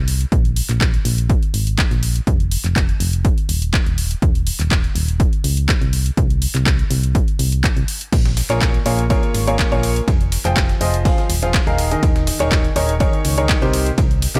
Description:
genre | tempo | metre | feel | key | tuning
piano house | 123 BPM | 4/4 | straight | unclear | A4 = 440 Hz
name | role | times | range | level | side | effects
solid FM bass | bass | 0.0-14.4 s | Eb1 to Db2 | -22 LUFS | equal | sidechain pumping
house drum kit | drums | 0.1-14.4 s | crash cymbal, handclaps, hi-hat | -26 LUFS | equal | none
electronic kick drum | drums | 0.3-14.1 s | none | -20 LUFS | equal | none
dusty soul sampler-style drum kit | drums | 8.1-14.3 s | hi-hat, ride cymbal, snare drum | -36 LUFS | equal | none
clear baby grand piano | riff | 8.5-14.4 s | C3 to G5 | -23 LUFS | equal | sidechain pumping, digital delay
room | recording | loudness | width
little or no reverb | none | -18 LUFS | mono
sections
0.0-14.4 A section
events
none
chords
0.3 Absus2; 2.3 Ebsus2; 4.0 N.C.; 8.1 Bbm7; 10.1 Fm7; 11.8 Eb7sus4; 13.7 Cm7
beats
| 0.32 0.81 1.30 1.78 | 2.27 2.76 3.25 3.73 | 4.22 4.71 5.20 5.69 | 6.17 6.66 7.15 7.64 | 8.13 8.61 9.10 9.59 | 10.08 10.56 11.05 11.54 | 12.03 12.52 13.00 13.49 | 13.98

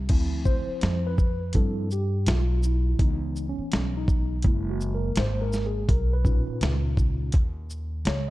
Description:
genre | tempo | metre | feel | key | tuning
hip hop, jazz-hop | 83 BPM | 4/4 | swing 59% on 16ths | unclear | A4 = 439 Hz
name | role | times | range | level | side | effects
mellow tine electric piano | accompaniment | 0.0-8.3 s | A#2 to C#5 | -31 LUFS | equal | medium stereo tremolo
upright bass | bass | 0.0-8.3 s | F#1 to G2 | -26 LUFS | equal | none
dusty soul sampler-style drum kit | drums | 0.1-8.3 s | crash cymbal, hi-hat, kick drum, shaker, snare drum | -24 LUFS | equal | none
room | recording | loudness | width
digital ambience | dark, warm production | -23 LUFS | side -17 dB against mid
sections
0.1-8.3 A section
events
tine electric piano solo 0.1-8.3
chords
0.1 Dm7; 3.0 C#m7; 4.4 F#7; 5.9 Bmaj9#11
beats
| 0.10 0.83 1.55 2.27 | 3.00 3.72 4.44 5.16 | 5.89 6.61 7.33 8.05

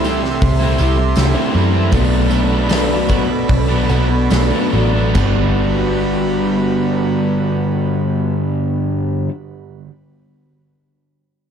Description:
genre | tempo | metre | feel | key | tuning
rock, shoegaze and dream pop | 70-82 BPM | 4/4 | straight | G major | A4 = 441 Hz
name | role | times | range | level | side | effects
airy breathy pad | sustained chords | 0.0-9.2 s | G3 to C6 | -24 LUFS | right 3 dB | chorus
twelve-string electric guitar | arpeggios | 0.0-9.3 s | E3 to G4 | -25 LUFS | right 13 dB | analog chorus, analog delay
overdriven electric guitar | riff | 0.0-9.3 s | G2 to E4 | -21 LUFS | right 9 dB | reverse reverb
raw garage guitar | riff | 0.0-9.3 s | G2 to E4 | -20 LUFS | left 9 dB | overdrive, wide subtle chorus
vintage muted picked electric bass | bass | 0.0-9.2 s | G1 to F#2 | -18 LUFS | equal | none
tambourine | percussion | 0.0-5.5 s | none | -36 LUFS | left 7 dB | none
huge arena drum kit | drums | 0.2-5.4 s | china cymbal, hi-hat, kick drum, snare drum, toms | -21 LUFS | equal | none
room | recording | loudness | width
small room ambience | dark, warm production | -14 LUFS | side -8 dB against mid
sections
0.0-5.2 A section; 5.2-8.6 B section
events
slowing down 0.0-5.2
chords
0.0 C6; 1.9 Bm7; 5.2 Gmaj7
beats
0.42 1.16 | 1.92 2.70 3.49 4.31 | 5.15 6.01 6.87 7.73

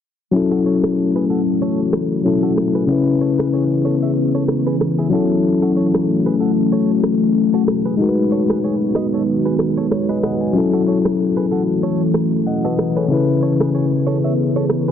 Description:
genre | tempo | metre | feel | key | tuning
afrobeats | 94 BPM | 4/4 | swing 55% on 16ths | F# dorian | A4 = 440 Hz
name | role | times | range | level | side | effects
bell-like tine electric piano | accompaniment | 0.3-14.9 s | C#3 to G#5 | -17 LUFS | left 3 dB | none
deep dark ambient pad | sustained chords | 1.0-14.9 s | D#3 to G#4 | -20 LUFS | left 1 dB | chorus, built-in reverb
electronic shaker and rim click | drums | 0.3-14.9 s | none | -25 LUFS | right 1 dB | overdrive
direct-recorded clean electric guitar | riff | 0.5-14.9 s | E4 to E5 | -29 LUFS | right 6 dB | tape echo
room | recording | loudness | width
moderate lush hall reverb, RT60 2.0 s | dense, heavily limited modern master, low-pass filter | -15 LUFS | side -8 dB against mid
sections
0.3-14.9 A section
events
none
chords
0.3 F#m7; 2.9 C#m7; 5.1 F#m7; 8.0 G#m7; 10.6 F#m7; 13.1 C#m7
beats
| 0.34 0.98 1.61 2.25 | 2.89 3.53 4.17 4.81 | 5.44 6.08 6.72 7.36 | 8.00 8.64 9.27 9.91 | 10.55 11.19 11.83 12.46 | 13.10 13.74 14.38

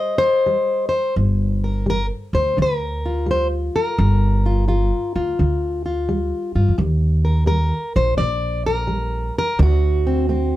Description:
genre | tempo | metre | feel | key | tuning
acoustic country blues, solo or duo | 86 BPM | 4/4 | swing 67% on 8ths | G minor | A4 = 440 Hz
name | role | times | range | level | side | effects
fingerpicked plugged-in steel-string acoustic guitar | melody | 0.0-10.6 s | G2 to Eb5 | -20 LUFS | left 1 dB | none
upright bass | bass | 1.2-10.5 s | G1 to G2 | -19 LUFS | equal | none
room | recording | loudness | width
little or no reverb | dark, warm production | -17 LUFS | side -14 dB against mid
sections
0.0-10.6 A section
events
none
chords
0.0 Cm; 1.2 Gm7; 6.8 Eb; 9.6 D7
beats
0.47 | 1.17 1.87 2.57 3.27 | 3.97 4.67 5.37 6.07 | 6.78 7.48 8.18 8.88 | 9.59 10.29

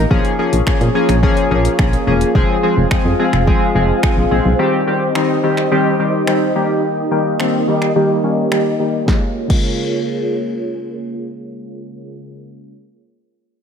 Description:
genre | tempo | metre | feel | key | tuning
dance-pop | 107 BPM | 4/4 | straight | Bb dorian | A4 = 440 Hz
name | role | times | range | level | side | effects
chorused retro synth keys | accompaniment | 0.0-12.8 s | Db3 to Ab4 | -18 LUFS | left 2 dB | sidechain pumping, low-pass filter
soft string machine | sustained chords | 0.0-12.1 s | Bb3 to F5 | -20 LUFS | equal | ensemble chorus, sidechain pumping, low-pass filter
solid FM bass | bass | 0.0-4.5 s | E1 to Bb2 | -16 LUFS | equal | sidechain pumping
deep house drum kit | drums | 0.1-9.7 s | crash cymbal, finger snaps, hi-hat, kick drum, snare drum | -18 LUFS | equal | overdrive
room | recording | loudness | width
light reverb | none | -13 LUFS | side -7 dB against mid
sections
0.1-9.1 A section; 9.1-11.3 B section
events
filter sweep 0.1-9.1; kick muted 8.0-9.1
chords
0.1 Bbm7; 2.4 Fm; 4.6 Cm; 6.6 Eb; 9.1 Bbm7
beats
| 0.11 0.67 1.23 1.79 | 2.35 2.91 3.47 4.03 | 4.59 5.15 5.71 6.28 | 6.84 7.40 7.96 8.52 | 9.08 9.64 10.20 10.76

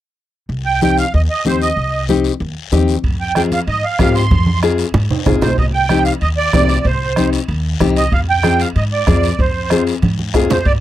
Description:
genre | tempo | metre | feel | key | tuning
latin, cumbia | 189 BPM | 4/4 | straight | C minor | A4 = 440 Hz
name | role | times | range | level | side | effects
upright bass | bass | 0.5-10.8 s | Ab1 to Ab2 | -18 LUFS | equal | none
guiro | percussion | 0.5-10.8 s | none | -30 LUFS | left 12 dB | none
musette accordion | melody | 0.7-10.7 s | C5 to C6 | -18 LUFS | right 4 dB | none
nylon-string guitar | accompaniment | 0.8-10.6 s | C4 to Ab4 | -17 LUFS | left 7 dB | none
congas | percussion | 0.8-10.6 s | none | -20 LUFS | right 2 dB | none
bombo | percussion | 3.0-10.8 s | none | -19 LUFS | right 1 dB | none
timbales | percussion | 3.0-10.8 s | none | -28 LUFS | right 6 dB | none
room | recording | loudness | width
little or no reverb | dry, close 1970s-style studio recording | -13 LUFS | side -13 dB against mid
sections
0.5-5.6 A section; 5.6-10.8 B section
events
drum fill 4.3-5.6, 10.0-10.7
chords
0.5 Cm; 3.0 Fm; 5.6 Cm; 8.1 Fm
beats
| 0.50 0.82 1.14 1.45 | 1.77 2.09 2.41 2.73 | 3.04 3.36 3.68 4.00 | 4.31 4.63 4.95 5.27 | 5.58 5.90 6.22 6.54 | 6.85 7.17 7.49 7.80 | 8.12 8.44 8.76 9.07 | 9.39 9.71 10.03 10.34 | 10.66

